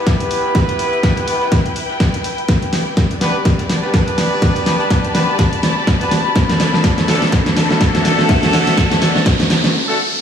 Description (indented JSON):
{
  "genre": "bass house",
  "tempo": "124 BPM",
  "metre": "4/4",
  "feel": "swing 57% on 16ths",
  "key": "unclear",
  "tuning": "A4 = 440 Hz",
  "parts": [
    { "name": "bright horn section", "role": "stabs", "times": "0.0-10.0 s", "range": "A3 to B4", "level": "-20 LUFS", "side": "equal", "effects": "sidechain pumping, low-pass filter, tape echo" },
    { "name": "dark studio string section", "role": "texture", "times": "0.0-9.7 s", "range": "D4 to B5", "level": "-22 LUFS", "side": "left 2 dB", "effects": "sidechain pumping" },
    { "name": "big-room dance drum kit", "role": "drums", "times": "0.1-9.7 s", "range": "hi-hat, snare drum", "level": "-17 LUFS", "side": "equal", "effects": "none" },
    { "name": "dusty soul sampler-style drum kit", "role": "drums", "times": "0.1-9.7 s", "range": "hi-hat, snare drum", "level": "-32 LUFS", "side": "equal", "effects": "none" },
    { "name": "electronic kick drum", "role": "drums", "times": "0.1-9.4 s", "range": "none", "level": "-18 LUFS", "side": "equal", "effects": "none" },
    { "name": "riser", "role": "sound effects", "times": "4.6-10.2 s", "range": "none", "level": "-25 LUFS", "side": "right 1 dB", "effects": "none" }
  ],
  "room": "moderate lush hall reverb, RT60 1.8 s",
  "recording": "studio reverb",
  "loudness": "-13 LUFS",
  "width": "side -8 dB against mid",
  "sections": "0.0-10.2 A section",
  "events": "build-up 0.0-10.2; drum fill 0.0-9.7; filter sweep on horn section 0.0-10.2; riser 4.6-10.2; break 9.7-10.2",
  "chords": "0.0 Em; 2.5 G; 6.4 D"
}